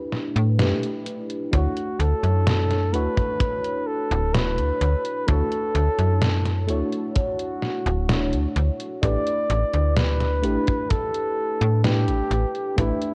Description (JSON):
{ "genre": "vaporwave", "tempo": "64 BPM", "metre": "4/4", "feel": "straight", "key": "D major", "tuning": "A4 = 440 Hz", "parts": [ { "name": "mellow FM electric piano", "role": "accompaniment", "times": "0.0-13.1 s", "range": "A3 to C#5", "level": "-30 LUFS", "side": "equal", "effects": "analog chorus" }, { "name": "detuned 8-bit digital drum machine", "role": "drums", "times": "0.1-13.1 s", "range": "hi-hat, snare drum", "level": "-29 LUFS", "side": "equal", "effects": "overdrive, gated reverb" }, { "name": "slap-like FM bass", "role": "bass", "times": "0.4-12.9 s", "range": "D1 to A2", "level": "-24 LUFS", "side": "equal", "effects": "none" }, { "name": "breathy flugelhorn", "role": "melody", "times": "1.5-13.1 s", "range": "E4 to D5", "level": "-29 LUFS", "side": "equal", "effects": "tape echo" }, { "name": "kick drum", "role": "drums", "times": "1.5-13.0 s", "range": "none", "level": "-27 LUFS", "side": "equal", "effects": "none" } ], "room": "light reverb, studio reverb", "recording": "cassette tape, nothing above 11.0 kHz", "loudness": "-23 LUFS", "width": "mono", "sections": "0.0-13.1 A section", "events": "none", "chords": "0.0 A7sus4; 1.5 Dmaj7; 9.0 A7sus4" }